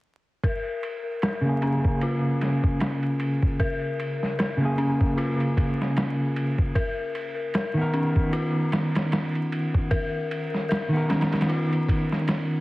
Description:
trip hop; 76 BPM; 4/4; swing 57% on 16ths; Bb phrygian; A4 = 441 Hz
dark detuned synth bell; arpeggios; 0.4-12.6 s; Db4 to Bb4; -30 LUFS; left 3 dB; chorus, low-pass filter, tape echo
dusty soul sampler-style drum kit; drums; 0.4-12.5 s; kick drum, ride cymbal, snare drum; -27 LUFS; equal; overdrive, low-pass filter on kick, vintage 12-bit sampler grit, low-pass filter on cymbals, low-pass filter on snare, low-pass filter on room
electric guitar at the edge of break-up; accompaniment; 1.4-12.6 s; Db3 to A#4; -25 LUFS; equal; tremolo, vintage 12-bit sampler grit, low-pass filter
light reverb, digital ambience; heavily compressed radio sound, multiband compression, vinyl crackle; -22 LUFS; side -19 dB against mid
0.4-12.6 A section
filter sweep on clean electric guitar 0.4-12.6
0.4 Bbm7; 6.8 Bmaj7

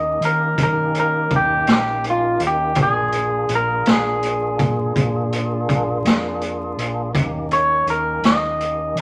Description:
slow blues; 55 BPM (dotted quarters); 12/8; straight; A4 = 441 Hz
electric guitar through a small old amp; melody; 0.0-9.0 s; F4 to Eb5; -22 LUFS; equal
tonewheel organ; sustained chords; 0.0-9.0 s; Bb3 to Ab4; -29 LUFS; equal; slow rotary speaker
fingered electric bass; bass; 0.0-9.0 s; Bb1 to Eb3; -29 LUFS; equal
raw garage drum kit; drums; 0.2-9.0 s; hi-hat, kick drum, snare drum; -23 LUFS; equal
moderate studio reverb, RT60 0.7 s; vinyl crackle; -19 LUFS; mono
0.0-9.0 A section
0.0 Eb7; 2.8 Bb7; 7.1 Eb7

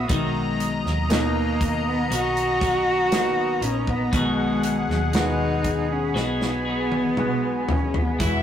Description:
pop ballad; 59 BPM; 4/4; straight; G# minor; A4 = 440 Hz
dark cello; melody; 0.0-8.4 s; F#3 to F#4; -25 LUFS; equal
bright concert grand piano; accompaniment; 0.0-8.4 s; B2 to F#4; -29 LUFS; equal
warm analog pad; sustained chords; 0.0-8.4 s; F#4 to E6; -29 LUFS; left 2 dB; chorus
twelve-string electric guitar; arpeggios; 0.0-8.4 s; B2 to A#4; -30 LUFS; left 2 dB
vintage muted fingered electric bass; bass; 0.0-8.4 s; E1 to D#2; -30 LUFS; equal
natural country drum kit; drums; 0.1-8.4 s; hi-hat, kick drum, snare drum, toms; -26 LUFS; equal
warm symphonic violin section; second line; 8.2-8.4 s; E4 to E5; -28 LUFS; equal
wet studio reverb, RT60 0.5 s; rough rehearsal-room recording; -20 LUFS; side -9 dB against mid
0.0-8.4 A section
drum fill 6.2-8.2
0.1 Bmaj7; 4.1 G#m7/B

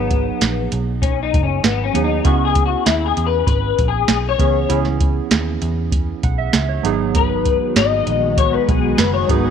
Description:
indie pop, bedroom pop; 98 BPM; 4/4; straight; G# minor; A4 = 435 Hz
electric guitar through a small old amp; accompaniment; 0.0-9.5 s; B3 to D#5; -19 LUFS; left 14 dB; ensemble chorus, vibrato effect
warbly lo-fi synth keys; accompaniment; 0.0-9.5 s; E3 to F#5; -23 LUFS; right 14 dB; chorus, cassette tape
vintage muted picked electric bass; bass; 0.0-9.5 s; F#1 to E2; -21 LUFS; equal
soft vintage rhythm box; drums; 0.1-9.4 s; hi-hat, kick drum, snare drum; -19 LUFS; right 2 dB
ethereal airy pad; sustained chords; 7.4-9.5 s; D#3 to F#4; -21 LUFS; equal; ensemble chorus, built-in reverb
digital ambience; 1960s-style stereo with parts hard left and right; -15 LUFS; side -8 dB against mid
0.0-9.5 A section
clean electric guitar solo 0.0-9.5
0.0 G#m7; 2.3 C#m7; 6.8 G#m7

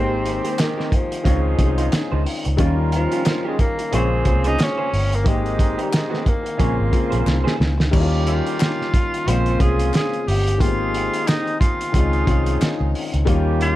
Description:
lush 1970s-style soul; 90 BPM; 4/4; swing 58% on 16ths; Bb dorian; A4 = 440 Hz
breathy tenor saxophone; melody; 0.0-13.8 s; Eb3 to C5; -25 LUFS; equal
clear grand piano; accompaniment; 0.0-13.8 s; Db3 to C5; -25 LUFS; left 6 dB
electric guitar through a small old amp; riff; 0.0-7.8 s; Bb3 to Db5; -29 LUFS; right 3 dB
warm horn section; stabs; 0.0-13.8 s; C3 to Bb4; -30 LUFS; right 7 dB
vintage muted fingered electric bass; bass; 0.0-13.7 s; G1 to Eb2; -20 LUFS; equal
cloth-damped thuddy drum kit; drums; 0.3-13.8 s; crash cymbal, hi-hat, kick drum, snare drum; -21 LUFS; equal
group handclap; percussion; 0.6-12.8 s; -35 LUFS; left 7 dB
studio reverb; dark, warm production; -17 LUFS; side -15 dB against mid
0.0-7.9 A section; 7.9-13.8 A section
drum fill 7.3-7.9
0.0 Abmaj9; 1.3 Dbmaj9; 2.6 Eb9; 3.9 Bbm9; 5.3 Abmaj9; 6.6 Bbm9; 7.9 Eb9; 9.3 Bbm9; 10.6 Abmaj9; 11.9 Dbmaj9

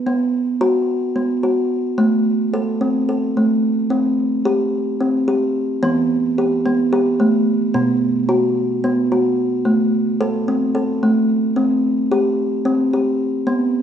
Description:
world meditative, meditative tuned percussion; 219 BPM (eighths); 7/8; straight; A4 = 442 Hz
kalimba; solo; 0.0-13.8 s; B2 to A4; -16 LUFS; equal
moderate recital hall reverb, RT60 1.4 s, small room ambience; -16 LUFS; side -9 dB against mid
0.1-13.8 A section
0.1 B5; 2.0 Am; 3.9 C5; 5.8 Em; 7.7 B5; 9.7 Am; 11.6 C5

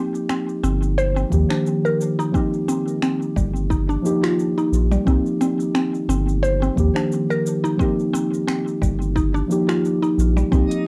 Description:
organic downtempo; 88 BPM; 4/4; swing 55% on 16ths; C minor; A4 = 441 Hz
muted felt-like synth keys; accompaniment; 0.0-10.9 s; Eb3 to G4; -24 LUFS; equal; chorus, sidechain pumping, low-pass filter, cassette tape, analog delay
mallet-like synth pluck; arpeggios; 0.0-10.7 s; G3 to C5; -26 LUFS; equal; chorus, phaser, cassette tape, analog delay
deep house drum kit; drums; 0.1-10.8 s; cabasa, finger snaps, hi-hat; -36 LUFS; equal; cassette tape
round analog bass; bass; 0.6-10.7 s; G1 to Eb2; -22 LUFS; equal
electronic kick drum; drums; 1.3-10.7 s; -25 LUFS; equal; cassette tape
twinkling granular texture; texture; 10.6-10.9 s; Eb4 to Eb6; -32 LUFS; equal; built-in reverb, cassette tape
moderate studio reverb, RT60 0.5 s; home recording on cassette; -20 LUFS; mono
0.0-10.9 A section
filter sweep on synth keys 0.0-10.9
0.0 Cm7

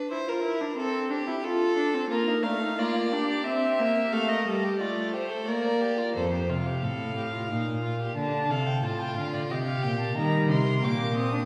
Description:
classical, baroque-style fugue for string quartet; 90 BPM; 3/4; straight; A4 = 440 Hz
warm violin; second line; 0.0-11.5 s; D4 to C5; -34 LUFS; equal
warm viola; accompaniment; 0.0-6.1, 10.2-11.4 s; G3 to F4; -31 LUFS; equal
dark violin; melody; 2.1-11.5 s; Bb4 to Eb6; -33 LUFS; equal
rich cello; bass; 6.2-11.5 s; F2 to Eb3; -30 LUFS; equal
wet recital hall reverb, RT60 1.7 s; heard from further back in the room; -27 LUFS; mono
0.0-6.2 A section; 6.2-11.5 B section
0.1 C7; 1.4 F; 2.1 Bb; 3.5 C7; 4.1 F7; 5.5 Bb; 6.2 F; 7.5 Eb/Bb; 8.2 Dm; 9.5 C5; 10.2 Eb

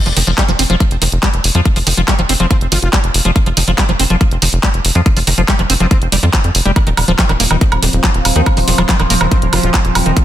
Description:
psychedelic trance; 141 BPM; 4/4; straight; A4 = 441 Hz
liquid acid bass; riff; 0.1-10.2 s; D3 to C4; -18 LUFS; left 1 dB; chorus, auto-pan, sidechain pumping, dub echo
tight sequencer bass; bass; 0.1-10.1 s; Eb1 to F2; -15 LUFS; equal
garage drum kit; drums; 0.1-10.2 s; handclaps, hi-hat, woodblock; -16 LUFS; right 1 dB; studio reverb
electronic kick drum; drums; 0.4-10.2 s; -13 LUFS; equal; studio reverb
metallic wobble bass; second line; 2.4-2.9, 5.8-6.0, 9.2-9.7 s; C4 to F4; -28 LUFS; left 2 dB
overtone-sweeping drone; sustained chords; 7.3-10.2 s; F3 to C4; -19 LUFS; right 2 dB; chorus, built-in reverb, sidechain pumping
little or no reverb; dense, heavily limited modern master; -10 LUFS; side -12 dB against mid
0.0-10.2 A section
0.0 F5; 6.8 Eb5

